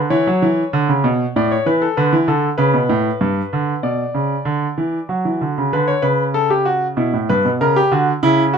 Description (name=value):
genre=classical, baroque-style two-part invention for grand piano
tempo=96 BPM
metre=3/4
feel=straight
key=B minor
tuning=A4 = 440 Hz
part: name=clear concert grand piano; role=solo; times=0.0-8.6 s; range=G2 to D5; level=-15 LUFS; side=equal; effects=none
room=light reverb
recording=close, detailed microphones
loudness=-15 LUFS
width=side -6 dB against mid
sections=0.0-5.7 A section; 5.7-8.6 B section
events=none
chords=0.1 Bmadd9; 1.4 D5/A; 3.2 G; 3.8 Bm; 5.1 F#5; 5.7 Bm; 7.0 Em; 7.6 F#7/C#